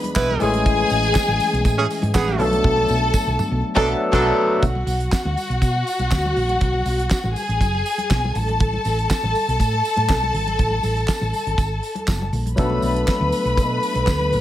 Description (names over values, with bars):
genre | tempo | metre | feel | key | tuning
disco | 121 BPM | 4/4 | straight | B dorian | A4 = 440 Hz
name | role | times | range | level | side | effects
rich studio string section | second line | 0.0-14.4 s | F#4 to B5 | -22 LUFS | left 2 dB | none
barky tine electric piano | accompaniment | 0.0-4.6, 12.6-14.4 s | E3 to A4 | -22 LUFS | left 1 dB | overdrive, phaser
damped 70s drum kit | drums | 0.0-14.4 s | crash cymbal, handclaps, hi-hat, kick drum, snare drum, toms | -23 LUFS | right 1 dB | none
congas | percussion | 0.0-14.4 s | none | -33 LUFS | left 2 dB | none
clear horn section | stabs | 0.2-4.3 s | D3 to B4 | -23 LUFS | right 4 dB | none
hollow-body short-scale fingered electric bass | bass | 0.2-14.4 s | F#1 to B2 | -23 LUFS | equal | none
tambourine | percussion | 0.2-14.4 s | none | -38 LUFS | right 6 dB | none
room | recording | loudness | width
light reverb, studio reverb | none | -17 LUFS | side -12 dB against mid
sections
0.0-4.6 A section; 4.6-14.4 B section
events
drum fill 2.6-4.6; band accent 3.6-4.6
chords
0.4 Amaj7; 2.4 Bm7; 4.6 B5; 8.4 F#madd9 (rootless); 12.6 Bm7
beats
0.16 | 0.66 1.15 1.65 2.15 | 2.64 3.14 3.63 4.13 | 4.62 5.12 5.62 6.12 | 6.61 7.11 7.61 8.11 | 8.60 9.10 9.60 10.10 | 10.59 11.09 11.59 12.08 | 12.58 13.08 13.57 14.07